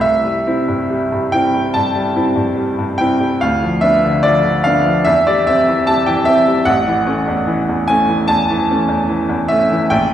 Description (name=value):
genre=classical, romantic character piece for solo piano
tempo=73 BPM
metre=4/4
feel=rubato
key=unclear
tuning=A4 = 440 Hz
part: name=bright baby grand piano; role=solo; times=0.0-10.1 s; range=A1 to A5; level=-13 LUFS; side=equal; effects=none
room=wet recital hall reverb, RT60 1.7 s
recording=heard from further back in the room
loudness=-13 LUFS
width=side -10 dB against mid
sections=0.0-10.1 A section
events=none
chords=0.1 C; 3.4 Bdim/D; 5.1 C/E; 6.7 A6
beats=| 0.06 0.92 1.75 2.57 | 3.41 4.25 5.06 5.87 | 6.68 7.48 8.30 9.11 | 9.93